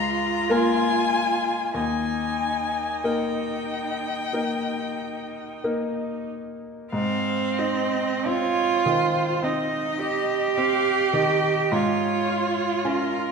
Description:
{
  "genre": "classical, slow romantic movement for piano trio",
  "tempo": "43-54 BPM",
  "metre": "4/4",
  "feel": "rubato",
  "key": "Ab major",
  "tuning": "A4 = 440 Hz",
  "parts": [
    { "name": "rich violin", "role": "melody", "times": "0.0-13.3 s", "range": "Bb4 to Bb5", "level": "-28 LUFS", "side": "left 5 dB", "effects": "none" },
    { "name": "rich cello", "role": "second line", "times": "0.0-13.3 s", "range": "C4 to G4", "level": "-25 LUFS", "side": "right 5 dB", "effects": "none" },
    { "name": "bright grand piano", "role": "accompaniment", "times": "0.0-13.3 s", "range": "Db2 to Bb4", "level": "-27 LUFS", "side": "left 2 dB", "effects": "none" }
  ],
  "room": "wet scoring stage reverb, RT60 1.7 s",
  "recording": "minimal, uncompressed stereo recording",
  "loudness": "-22 LUFS",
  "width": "side -5 dB against mid",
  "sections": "0.0-6.9 A section; 6.9-13.3 B section",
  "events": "none",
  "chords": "0.0 Bbm/Db; 1.7 Eb; 6.9 Ab; 11.7 Db/Ab",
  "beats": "0.50 | 1.74 3.04 4.33 5.63 | 6.92 8.25 9.43 10.56 | 11.71 12.85"
}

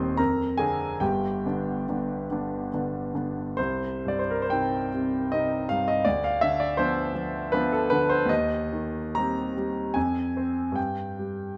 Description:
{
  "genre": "classical, romantic nocturne for solo piano",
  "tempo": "61-84 BPM",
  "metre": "3/4",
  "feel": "rubato",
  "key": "C minor",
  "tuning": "A4 = 440 Hz",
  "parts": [
    { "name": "clear grand piano", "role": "solo", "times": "0.0-11.6 s", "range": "Eb1 to Eb6", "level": "-27 LUFS", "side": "equal", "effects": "none" }
  ],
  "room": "moderate large studio reverb, RT60 1.3 s",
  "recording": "close, detailed microphones",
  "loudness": "-27 LUFS",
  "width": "mono",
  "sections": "0.0-3.6 A section; 3.6-11.6 B section",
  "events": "none",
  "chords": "0.2 Dm7b5/F; 1.0 G; 3.6 Cm; 6.1 Bdim/D; 8.3 Cm/Eb; 10.0 Fm; 10.8 N.C.",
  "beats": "0.18 | 1.01 1.89 2.72 | 3.58 4.51 5.31 | 6.05 6.77 7.52 | 8.29 9.17 9.96 | 10.77"
}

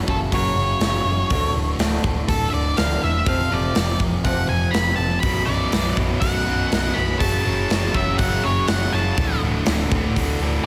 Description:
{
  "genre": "quiet-loud alternative rock",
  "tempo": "122 BPM",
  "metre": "4/4",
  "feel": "straight",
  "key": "unclear",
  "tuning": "A4 = 438 Hz",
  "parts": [
    { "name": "fingerpicked acoustic archtop guitar", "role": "arpeggios", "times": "0.0-5.2 s", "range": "D2 to F#3", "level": "-32 LUFS", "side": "equal", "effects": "slapback echo, tape echo" },
    { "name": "thick fuzz guitar", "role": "riff", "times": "0.0-10.7 s", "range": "B1 to F#3", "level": "-28 LUFS", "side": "equal", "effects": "distortion, slapback echo" },
    { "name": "octave-fuzz lead guitar", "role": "melody", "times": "0.1-9.4 s", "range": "A4 to B5", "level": "-27 LUFS", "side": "equal", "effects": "distortion, slapback echo, tape echo" },
    { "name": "overdriven picked electric bass", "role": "bass", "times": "0.1-10.6 s", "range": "B0 to F#1", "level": "-27 LUFS", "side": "equal", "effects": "none" },
    { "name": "big rock drum kit", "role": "drums", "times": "0.1-10.3 s", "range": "hi-hat, kick drum, snare drum", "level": "-26 LUFS", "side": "equal", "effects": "none" },
    { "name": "distorted electric guitar", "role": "riff", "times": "5.2-10.7 s", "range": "B1 to F#3", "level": "-29 LUFS", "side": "equal", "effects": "distortion" }
  ],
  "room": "moderate concert hall reverb, RT60 2.3 s",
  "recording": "big arena sound",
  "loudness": "-20 LUFS",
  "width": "mono",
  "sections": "0.0-10.7 A section",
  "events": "lead electric guitar solo 0.0-10.7",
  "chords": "0.0 F#5; 1.3 D5; 3.3 F5; 5.2 Bm; 7.2 F#m; 9.2 D5",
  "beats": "0.33 0.82 | 1.31 1.80 2.29 2.78 | 3.27 3.76 4.25 4.75 | 5.24 5.73 6.22 6.71 | 7.21 7.70 8.19 8.68 | 9.18 9.67 10.16 10.65"
}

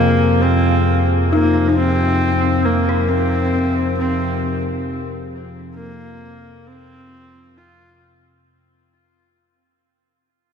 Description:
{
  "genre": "ambient",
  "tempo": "67 BPM",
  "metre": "4/4",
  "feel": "straight",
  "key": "unclear",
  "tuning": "A4 = 440 Hz",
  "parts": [
    { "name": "clear horsehead fiddle", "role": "melody", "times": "0.0-8.3 s", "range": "Bb3 to F4", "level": "-20 LUFS", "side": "equal", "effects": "ping-pong delay" },
    { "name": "deep dark ambient pad", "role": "sustained chords", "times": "0.0-8.5 s", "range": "F4 to F5", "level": "-26 LUFS", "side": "right 4 dB", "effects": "chorus, built-in reverb" },
    { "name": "analog drone", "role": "drone", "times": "0.0-8.6 s", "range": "F2 to C3", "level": "-18 LUFS", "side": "equal", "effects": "chorus" },
    { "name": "dark detuned synth bell", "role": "arpeggios", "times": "1.3-8.5 s", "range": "Eb4 to Bb4", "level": "-23 LUFS", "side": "left 6 dB", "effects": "chorus, ping-pong delay" }
  ],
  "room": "moderate huge ambient reverb, RT60 7.9 s",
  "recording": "dark, warm production",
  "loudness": "-15 LUFS",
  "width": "side -7 dB against mid",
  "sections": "0.0-8.5 A section",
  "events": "fade-out on ambient pad 0.0-8.5; fade-out 0.0-8.5",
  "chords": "0.0 Fm",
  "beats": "0.41 | 1.31 2.20 3.08 3.98 | 4.87 5.77 6.67 7.58"
}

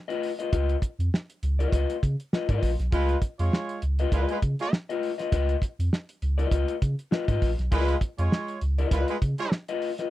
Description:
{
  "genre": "funk",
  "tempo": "100 BPM",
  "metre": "4/4",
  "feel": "swing 56% on 16ths",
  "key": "Db mixolydian",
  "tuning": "A4 = 439 Hz",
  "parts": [
    { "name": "electric guitar at the edge of break-up", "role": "accompaniment", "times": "0.1-10.1 s", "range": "F4 to Eb5", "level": "-29 LUFS", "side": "left 6 dB", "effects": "none" },
    { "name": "cloth-damped thuddy drum kit", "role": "drums", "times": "0.1-10.1 s", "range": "hi-hat, kick drum, snare drum", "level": "-26 LUFS", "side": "right 1 dB", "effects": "none" },
    { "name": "warm sub bass", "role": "bass", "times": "0.5-9.3 s", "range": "Bb1 to Db3", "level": "-25 LUFS", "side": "equal", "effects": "none" },
    { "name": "warm horn section", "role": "second line", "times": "2.9-9.5 s", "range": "Ab3 to Db5", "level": "-29 LUFS", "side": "right 3 dB", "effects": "none" }
  ],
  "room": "little or no reverb",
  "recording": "dry, close 1970s-style studio recording",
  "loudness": "-24 LUFS",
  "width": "side -15 dB against mid",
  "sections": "0.0-10.1 A section",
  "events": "none",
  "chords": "0.0 Db9",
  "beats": "| 0.53 1.13 1.73 2.33 | 2.93 3.53 4.12 4.72 | 5.32 5.92 6.52 7.12 | 7.72 8.32 8.92 9.51"
}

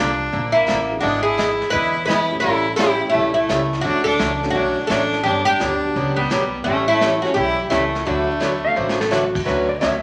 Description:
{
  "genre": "country, western swing",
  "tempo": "171 BPM",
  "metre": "4/4",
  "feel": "swing 65% on 8ths",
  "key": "D major",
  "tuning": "A4 = 440 Hz",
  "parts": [
    { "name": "oud", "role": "melody", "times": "0.0-9.1 s", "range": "B3 to B4", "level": "-23 LUFS", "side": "equal", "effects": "none" },
    { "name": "clear fiddle", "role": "second line", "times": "0.0-9.1 s", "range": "G3 to E4", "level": "-24 LUFS", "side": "equal", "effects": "none" },
    { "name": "picked swing-style acoustic guitar", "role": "accompaniment", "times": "0.0-9.9 s", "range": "D3 to B4", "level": "-26 LUFS", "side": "equal", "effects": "none" },
    { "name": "upright bass", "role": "bass", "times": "0.0-10.0 s", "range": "G1 to E2", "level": "-32 LUFS", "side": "equal", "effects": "none" },
    { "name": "vintage brush drum kit", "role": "drums", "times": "0.3-10.0 s", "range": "brushed snare drum, crash cymbal, hi-hat, kick drum, snare drum", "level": "-30 LUFS", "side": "equal", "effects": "none" },
    { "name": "dark upright piano", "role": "accompaniment", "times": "0.9-9.7 s", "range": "G3 to A4", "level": "-33 LUFS", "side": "equal", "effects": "none" },
    { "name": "clean lap steel guitar", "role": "second line", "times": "8.6-10.0 s", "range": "F#4 to F5", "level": "-24 LUFS", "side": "equal", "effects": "none" }
  ],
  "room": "wet large studio reverb, RT60 0.9 s",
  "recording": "vinyl crackle",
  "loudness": "-19 LUFS",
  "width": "mono",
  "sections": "0.0-9.5 A section",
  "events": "drum fill 8.8-9.1",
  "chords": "0.0 Bbmaj7; 1.0 E7/G#; 2.4 A7; 3.8 Dmaj7; 5.2 Gmaj7; 6.7 A7; 8.1 D6; 9.5 Dmaj7",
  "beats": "0.33 0.68 | 1.03 1.38 1.73 2.08 | 2.44 2.79 3.14 3.49 | 3.84 4.19 4.55 4.90 | 5.25 5.60 5.95 6.30 | 6.66 7.01 7.36 7.71 | 8.06 8.42 8.77 9.12 | 9.47 9.82"
}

